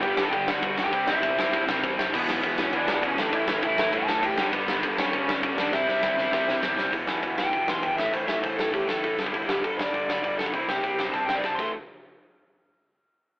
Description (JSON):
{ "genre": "punk rock", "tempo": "200 BPM", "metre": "4/4", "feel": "straight", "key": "unclear", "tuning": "A4 = 440 Hz", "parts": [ { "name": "lead guitar through a small cranked amp", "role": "melody", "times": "0.0-11.7 s", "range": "B3 to C6", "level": "-27 LUFS", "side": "equal", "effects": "overdrive" }, { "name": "distorted electric guitar", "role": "riff", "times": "0.0-6.9 s", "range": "G2 to E4", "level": "-33 LUFS", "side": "equal", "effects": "none" }, { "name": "overdriven electric guitar", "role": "riff", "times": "0.0-11.7 s", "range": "E2 to C4", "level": "-28 LUFS", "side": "equal", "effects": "none" }, { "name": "overdriven electric guitar", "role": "riff", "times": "0.0-11.7 s", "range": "E2 to C4", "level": "-32 LUFS", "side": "equal", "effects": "none" }, { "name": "overdriven picked electric bass", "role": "bass", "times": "0.0-11.7 s", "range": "E1 to A2", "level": "-43 LUFS", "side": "equal", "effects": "none" }, { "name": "big rock drum kit", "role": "drums", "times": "0.0-11.7 s", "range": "crash cymbal, hi-hat, kick drum, ride cymbal, snare drum", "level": "-29 LUFS", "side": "equal", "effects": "none" } ], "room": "light reverb", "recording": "band playing live in one room, telephone sound", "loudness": "-22 LUFS", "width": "side -30 dB against mid", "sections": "0.0-6.9 A section; 6.9-11.7 B section; 11.7-12.9 C section", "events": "drum fill 5.7-6.9, 11.4-11.7; lead electric guitar solo 6.9-11.7", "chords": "0.0 G; 0.9 C; 2.1 E; 3.2 A; 4.4 G; 5.7 C; 6.9 E5; 8.0 A5; 9.2 G5; 10.5 C5; 11.6 A5; 11.7 N.C.", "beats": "0.03 0.33 0.63 | 0.93 1.23 1.53 1.83 | 2.13 2.43 2.73 3.03 | 3.33 3.63 3.93 4.23 | 4.53 4.83 5.13 5.43 | 5.73 6.03 6.33 6.63 | 6.93 7.23 7.53 7.83 | 8.13 8.43 8.73 9.03 | 9.34 9.64 9.94 10.24 | 10.54 10.84 11.14 11.44" }